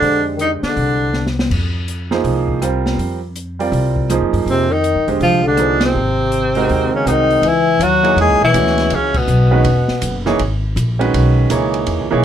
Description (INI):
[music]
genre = modal jazz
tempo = 162 BPM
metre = 4/4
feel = swing 64% on 8ths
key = F dorian, C# dorian from 7.4 s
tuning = A4 = 440 Hz
[part]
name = breathy tenor saxophone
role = melody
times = 0.0-1.3, 4.5-10.3 s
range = B3 to G#4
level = -16 LUFS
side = equal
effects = none
[part]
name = mellow bass clarinet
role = second line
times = 0.0-1.3, 4.5-10.3 s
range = B2 to G#3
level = -20 LUFS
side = left 5 dB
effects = none
[part]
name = clear concert grand piano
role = accompaniment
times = 0.0-12.2 s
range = D3 to Eb5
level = -19 LUFS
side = right 5 dB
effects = none
[part]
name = upright bass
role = bass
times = 0.0-12.2 s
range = E1 to G2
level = -18 LUFS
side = equal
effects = none
[part]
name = open jazz drum kit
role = drums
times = 0.0-12.0 s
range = crash cymbal, hi-hat, kick drum, ride cymbal, rim click, snare drum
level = -25 LUFS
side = left 1 dB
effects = none
[sound]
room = light reverb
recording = none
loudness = -13 LUFS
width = side -9 dB against mid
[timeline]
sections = 0.0-7.4 A section; 7.4-12.2 B section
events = drum fill 1.1-1.5; band accent 5.8, 9.1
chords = 0.0 Fm69; 6.0 Ab7; 7.4 C#m9